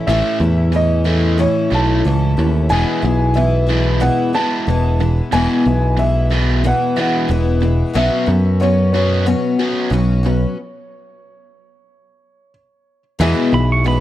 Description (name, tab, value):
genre	rock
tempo	92 BPM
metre	4/4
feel	straight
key	E major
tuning	A4 = 440 Hz
part	dark concert grand piano	melody	0.0-12.5 s	C#5 to A5	-21 LUFS	right 1 dB	tape echo
part	picked twelve-string acoustic guitar	accompaniment	0.0-14.0 s	E2 to F#4	-20 LUFS	left 4 dB	none
part	biting overdriven guitar	riff	0.0-14.0 s	E2 to B3	-21 LUFS	right 1 dB	none
part	picked electric bass	bass	0.1-14.0 s	E1 to F#2	-16 LUFS	equal	none
part	warm upright piano	accompaniment	13.2-14.0 s	G#4 to F#5	-25 LUFS	right 2 dB	none
part	pedal steel guitar	second line	13.5-14.0 s	B5 to C#6	-20 LUFS	right 4 dB	none
room	small room ambience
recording	dry, close 1970s-style studio recording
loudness	-13 LUFS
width	side -13 dB against mid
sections	0.0-13.2 A section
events	stop 10.6-13.2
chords	0.0 A; 2.7 E; 8.0 Bsus2; 13.2 E